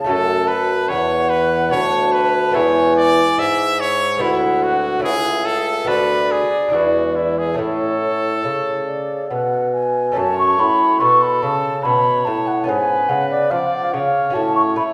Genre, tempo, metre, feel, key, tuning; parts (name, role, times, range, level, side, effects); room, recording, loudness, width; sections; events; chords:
classical, baroque-style sonata movement with continuo; 72 BPM; 3/4; straight; A major, F# minor from 10.2 s; A4 = 441 Hz
mellow baroque flute; second line; 0.0-14.8 s; C#5 to C#6; -21 LUFS; equal
lute; accompaniment; 0.0-14.9 s; D2 to C#5; -28 LUFS; equal
mellow bassoon; bass; 0.0-14.9 s; C#2 to A3; -23 LUFS; equal
clear trumpet; melody; 0.1-14.9 s; E4 to E5; -24 LUFS; equal
wet recital hall reverb, RT60 1.5 s; recorded in a church or concert hall; -18 LUFS; mono
0.0-10.2 A section; 10.2-14.9 A section
0.1 F#m; 1.7 Bm/D; 2.6 E; 4.2 E7/D; 5.0 A/C#; 5.9 Bm/D; 6.7 E7; 7.6 A; 10.2 F#m; 12.7 C#7/G#; 14.3 F#m/A